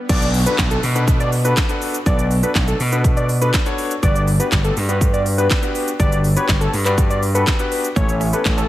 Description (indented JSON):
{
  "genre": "dance-pop",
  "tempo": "122 BPM",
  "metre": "4/4",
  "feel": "straight",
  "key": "B minor",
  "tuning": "A4 = 440 Hz",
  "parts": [
    { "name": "warm concert grand piano", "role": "accompaniment", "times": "0.0-8.7 s", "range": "A3 to D5", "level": "-24 LUFS", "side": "left 3 dB", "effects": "sidechain pumping, slapback echo" },
    { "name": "swell and downlifter", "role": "sound effects", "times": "0.0-4.0 s", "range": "none", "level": "-32 LUFS", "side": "equal", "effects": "slapback echo" },
    { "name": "fat analog lead", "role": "melody", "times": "0.1-8.7 s", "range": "A4 to D5", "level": "-23 LUFS", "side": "equal", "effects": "chorus, sidechain pumping, slapback echo, tape echo" },
    { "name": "gritty slap bass", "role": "bass", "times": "0.1-8.6 s", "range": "G1 to B2", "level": "-18 LUFS", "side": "equal", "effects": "overdrive, sidechain pumping" },
    { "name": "house drum kit", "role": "drums", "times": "0.1-8.7 s", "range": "crash cymbal, handclaps, hi-hat, kick drum, shaker, snare drum", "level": "-19 LUFS", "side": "equal", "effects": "none" },
    { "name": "direct-recorded clean electric guitar", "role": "riff", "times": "8.0-8.7 s", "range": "A3 to C#4", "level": "-29 LUFS", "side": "right 6 dB", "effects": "wide subtle chorus, slapback echo" }
  ],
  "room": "light reverb, digital ambience",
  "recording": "none",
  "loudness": "-15 LUFS",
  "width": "side -14 dB against mid",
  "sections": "0.1-8.7 A section",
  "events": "drop 0.1-8.7",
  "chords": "0.1 Bm7; 4.0 Gmaj7; 8.0 A7",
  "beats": "| 0.10 0.59 1.08 1.57 | 2.06 2.55 3.05 3.54 | 4.03 4.52 5.01 5.50 | 6.00 6.49 6.98 7.47 | 7.96 8.46"
}